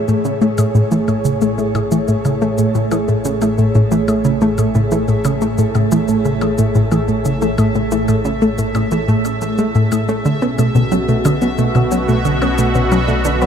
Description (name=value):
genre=ambient, sequencer-driven space music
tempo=90 BPM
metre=4/4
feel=straight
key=A major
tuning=A4 = 440 Hz
part: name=sweeping resonant pad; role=sustained chords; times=0.0-13.5 s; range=A2 to D5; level=-19 LUFS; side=right 2 dB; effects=chorus, shimmer reverb
part: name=fat analog bass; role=bass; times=0.0-13.5 s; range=A1 to B1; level=-28 LUFS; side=equal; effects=none
part: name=bubbling stepped-filter texture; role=texture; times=0.0-13.5 s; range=E5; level=-30 LUFS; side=right 1 dB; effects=chorus, built-in reverb, shimmer reverb
part: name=soft round pluck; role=arpeggios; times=0.1-13.5 s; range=A3 to C#4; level=-21 LUFS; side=moving between left 6 dB and right 1 dB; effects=chorus, auto-pan, tape echo, shimmer reverb
part: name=analog pluck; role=riff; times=0.1-13.5 s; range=A2 to C#4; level=-16 LUFS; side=equal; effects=chorus, tape echo, shimmer reverb
part: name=shaker and percussion blips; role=percussion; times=0.1-13.5 s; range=none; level=-33 LUFS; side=left 4 dB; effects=overdrive, tape echo
room=moderate huge ambient reverb, RT60 8.9 s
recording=none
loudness=-13 LUFS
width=side -8 dB against mid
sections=0.0-13.5 A section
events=fade-in on analog synth bass 0.0-13.5; fade-in on synth texture 0.0-13.5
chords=0.0 Amaj7; 10.3 Bm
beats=0.25 0.92 1.58 | 2.25 2.92 3.58 4.25 | 4.92 5.58 6.25 6.92 | 7.58 8.25 8.92 9.58 | 10.25 10.92 11.58 12.25 | 12.92